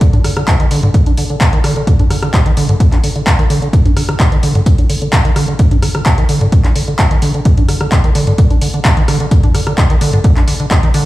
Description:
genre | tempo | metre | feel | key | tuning
acid house | 129 BPM | 4/4 | straight | unclear | A4 = 440 Hz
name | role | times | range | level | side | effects
acid bass, square | riff | 0.0-11.0 s | C3 to D4 | -16 LUFS | equal | tube saturation, wide subtle chorus, sidechain pumping, ping-pong delay
booming analog drum machine | drums | 0.0-11.0 s | handclaps, hi-hat, rim click, toms | -16 LUFS | equal | none
electronic kick drum | drums | 0.0-10.8 s | none | -12 LUFS | equal | none
room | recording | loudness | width
light reverb | played on a big sound system in a bare room, stone room reverb | -10 LUFS | side -16 dB against mid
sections
0.0-11.1 A section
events
filter sweep on acid bass 0.0-11.1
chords
none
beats
| 0.01 0.48 0.94 1.41 | 1.87 2.34 2.80 3.27 | 3.73 4.20 4.66 5.13 | 5.59 6.06 6.52 6.99 | 7.45 7.92 8.38 8.85 | 9.31 9.78 10.24 10.71

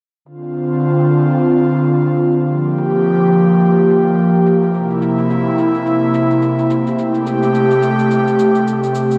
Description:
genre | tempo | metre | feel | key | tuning
sunset chillout | 107 BPM | 4/4 | swing 57% on 16ths | D minor | A4 = 439 Hz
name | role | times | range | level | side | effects
airy breathy pad | sustained chords | 0.3-9.2 s | C3 to G4 | -15 LUFS | equal | chorus
cabasa | drums | 0.3-9.2 s | none | -44 LUFS | equal | overdrive, low-pass filter on perc
room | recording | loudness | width
wet lush hall reverb, RT60 1.9 s | bright 1980s-style digital production | -15 LUFS | mono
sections
0.3-9.2 A section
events
filter sweep on drum 0.3-9.2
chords
0.3 Dm7; 2.5 Gm7; 4.7 C7; 7.0 Am7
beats
| 0.26 0.82 1.38 1.94 | 2.50 3.06 3.62 4.18 | 4.75 5.30 5.87 6.43 | 6.99 7.55 8.11 8.67

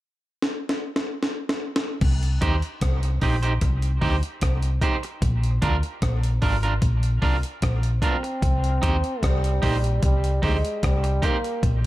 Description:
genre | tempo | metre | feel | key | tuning
dub reggae | 75 BPM | 4/4 | straight | C minor | A4 = 441 Hz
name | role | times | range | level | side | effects
breakbeat sampler-style drum kit | drums | 0.4-11.8 s | crash cymbal, hi-hat, kick drum, rim click, snare drum | -25 LUFS | equal | none
vintage muted fingered electric bass | bass | 2.0-11.9 s | Ab1 to Eb2 | -22 LUFS | equal | none
electric guitar at the edge of break-up | accompaniment | 2.4-11.4 s | D4 to C5 | -29 LUFS | right 3 dB | dub echo
warm trombone | melody | 8.0-11.6 s | G3 to C4 | -28 LUFS | equal | dub echo
room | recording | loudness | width
digital ambience | dark, warm production | -21 LUFS | side -16 dB against mid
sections
0.0-2.0 A section; 2.0-8.4 B section; 8.4-11.9 C section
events
drum fill 0.4-2.0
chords
0.0 N.C.; 2.0 Cm; 5.2 Bb; 8.4 Cm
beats
0.41 1.21 | 2.02 2.81 3.62 4.42 | 5.22 6.02 6.82 7.62 | 8.42 9.22 10.03 10.83 | 11.63

